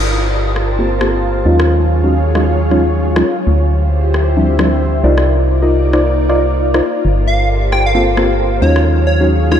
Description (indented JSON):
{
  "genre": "UK garage, two-step garage",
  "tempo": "134 BPM",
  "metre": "4/4",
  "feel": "swing 62% on 16ths",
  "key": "G minor",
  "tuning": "A4 = 441 Hz",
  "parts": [
    { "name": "soft string machine", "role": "sustained chords", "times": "0.0-9.6 s", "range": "Gb3 to A5", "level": "-22 LUFS", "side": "equal", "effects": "ensemble chorus" },
    { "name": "organ-like FM bass", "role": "bass", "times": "0.0-9.6 s", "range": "G1 to Eb2", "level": "-14 LUFS", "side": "equal", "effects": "none" },
    { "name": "airy breathy pad", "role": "texture", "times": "0.0-9.6 s", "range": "Bb3 to F5", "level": "-22 LUFS", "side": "equal", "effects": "chorus" },
    { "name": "electronic rim click", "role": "drums", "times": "0.6-9.6 s", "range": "none", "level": "-24 LUFS", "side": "left 1 dB", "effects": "none" },
    { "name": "deep mellow chord stab", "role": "stabs", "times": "0.8-9.6 s", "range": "F3 to Eb5", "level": "-16 LUFS", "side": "left 1 dB", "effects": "chorus, diffuse ambient delay" },
    { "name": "plucky unison lead", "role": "melody", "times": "7.3-9.6 s", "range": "Db5 to G5", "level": "-19 LUFS", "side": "equal", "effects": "diffuse ambient delay" }
  ],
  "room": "wet church reverb, RT60 3.8 s",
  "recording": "dreamy mix soaked in reverb",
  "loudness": "-11 LUFS",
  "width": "side -9 dB against mid",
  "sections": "0.0-9.6 A section",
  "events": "none",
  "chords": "0.0 Gm11; 1.5 Ebm11; 3.5 Dm11; 5.0 Cm11; 7.1 Gm11; 8.6 Ebm11",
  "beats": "0.34 0.79 1.23 | 1.68 2.13 2.58 3.02 | 3.47 3.92 4.37 4.82 | 5.26 5.71 6.16 6.61 | 7.05 7.50 7.95 8.40 | 8.85 9.29"
}